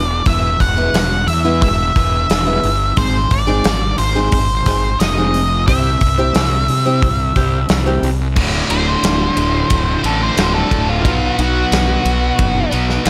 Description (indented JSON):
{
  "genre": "quiet-loud alternative rock",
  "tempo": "89 BPM",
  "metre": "4/4",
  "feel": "straight",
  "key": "unclear",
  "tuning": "A4 = 439 Hz",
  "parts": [
    { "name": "octave-fuzz lead guitar", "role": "melody", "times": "0.0-13.1 s", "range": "F4 to F#5", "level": "-21 LUFS", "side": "equal", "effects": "distortion" },
    { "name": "fuzz fingered electric bass", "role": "bass", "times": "0.0-13.1 s", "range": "D1 to C3", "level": "-20 LUFS", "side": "equal", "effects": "overdrive" },
    { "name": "picked steel-string acoustic guitar", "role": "arpeggios", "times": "0.3-13.1 s", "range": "D2 to C5", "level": "-24 LUFS", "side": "equal", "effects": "none" },
    { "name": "big rock drum kit", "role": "drums", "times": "0.3-13.1 s", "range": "crash cymbal, hi-hat, kick drum, ride cymbal, snare drum", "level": "-21 LUFS", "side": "equal", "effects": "none" },
    { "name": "distorted electric guitar", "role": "riff", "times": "8.4-13.1 s", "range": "D2 to B3", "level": "-21 LUFS", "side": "equal", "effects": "overdrive" }
  ],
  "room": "small room ambience",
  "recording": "none",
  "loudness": "-15 LUFS",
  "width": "mono",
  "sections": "0.0-8.4 A section; 8.4-13.1 B section",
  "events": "lead electric guitar solo 8.4-13.1",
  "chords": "0.3 E; 3.0 G#; 5.7 C; 8.4 D; 11.1 B",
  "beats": "| 0.26 0.94 1.62 2.30 | 2.97 3.65 4.33 5.00 | 5.67 6.35 7.02 7.70 | 8.37 9.04 9.71 10.38 | 11.05 11.72 12.39 13.06"
}